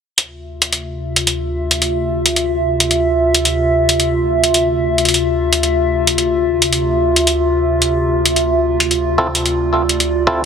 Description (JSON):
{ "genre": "glitch hop", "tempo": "110 BPM", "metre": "4/4", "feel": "swing 61% on 16ths", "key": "D minor", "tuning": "A4 = 441 Hz", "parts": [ { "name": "warbly tape-like pad", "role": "sustained chords", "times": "0.5-10.5 s", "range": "D2 to E5", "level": "-15 LUFS", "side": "equal", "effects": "chorus, built-in reverb, phaser" }, { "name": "electronic hi-hat", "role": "drums", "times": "0.2-10.1 s", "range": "none", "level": "-14 LUFS", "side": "equal", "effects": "none" }, { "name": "clav", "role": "stabs", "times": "9.2-10.4 s", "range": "C4 to A4", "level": "-18 LUFS", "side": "equal", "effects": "digital delay" } ], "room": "light reverb", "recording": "heavily compressed radio sound, multiband compression", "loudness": "-13 LUFS", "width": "side -7 dB against mid", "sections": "0.2-10.5 A section", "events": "none", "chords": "0.2 Dm9" }